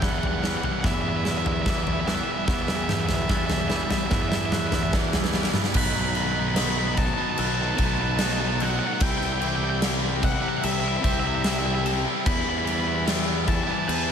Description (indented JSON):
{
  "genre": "post-rock",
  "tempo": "74 BPM",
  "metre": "4/4",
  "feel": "straight",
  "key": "E minor",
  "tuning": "A4 = 439 Hz",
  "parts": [
    { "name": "octave-fuzz lead guitar", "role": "melody", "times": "0.0-14.1 s", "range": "E5 to B5", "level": "-30 LUFS", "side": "equal", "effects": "distortion, tape echo" },
    { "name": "glockenspiel with soft plastic mallets", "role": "arpeggios", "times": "0.0-14.1 s", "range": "D6 to G7", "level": "-38 LUFS", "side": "right 3 dB", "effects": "tape echo" },
    { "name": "twelve-string electric guitar", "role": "arpeggios", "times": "0.0-14.1 s", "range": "B2 to B4", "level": "-35 LUFS", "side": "left 2 dB", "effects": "none" },
    { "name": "cranked stack guitar", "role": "riff", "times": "0.0-14.1 s", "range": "E2 to E4", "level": "-31 LUFS", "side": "left 13 dB", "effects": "overdrive" },
    { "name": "tight distorted guitar", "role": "riff", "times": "0.0-14.1 s", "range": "B2 to E4", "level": "-30 LUFS", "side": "right 14 dB", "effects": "distortion" },
    { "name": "fuzz fingered electric bass", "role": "bass", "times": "0.0-14.1 s", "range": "B1 to E2", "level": "-29 LUFS", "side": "equal", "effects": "overdrive" },
    { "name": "huge arena drum kit", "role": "drums", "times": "0.0-14.1 s", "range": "crash cymbal, kick drum, snare drum, toms", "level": "-26 LUFS", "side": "equal", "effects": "none" }
  ],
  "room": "light reverb, studio ambience",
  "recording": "none",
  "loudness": "-22 LUFS",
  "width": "side -7 dB against mid",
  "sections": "0.0-5.8 A section; 5.8-14.1 B section",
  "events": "build-up 0.0-5.8; drum fill 0.0-5.8",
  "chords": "0.0 Em7; 5.8 B7; 9.0 C6; 12.3 Em"
}